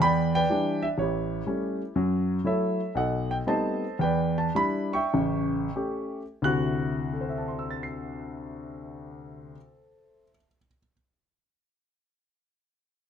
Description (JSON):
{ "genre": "solo jazz", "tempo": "86-123 BPM", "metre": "4/4", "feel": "swing 66% on 8ths", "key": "D mixolydian", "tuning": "A4 = 440 Hz", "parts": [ { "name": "warm grand piano", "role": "solo", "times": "0.0-10.9 s", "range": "A1 to C7", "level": "-25 LUFS", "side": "equal", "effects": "none" } ], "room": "light reverb", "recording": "close, detailed microphones", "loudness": "-25 LUFS", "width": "side -8 dB against mid", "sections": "0.0-6.4 A section; 6.4-12.0 B section", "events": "slowing down 2.0-6.4", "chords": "0.0 Em7; 1.0 A7; 2.0 F#m7; 2.9 B7b9b13; 4.0 Em7; 5.1 A7; 6.4 D9" }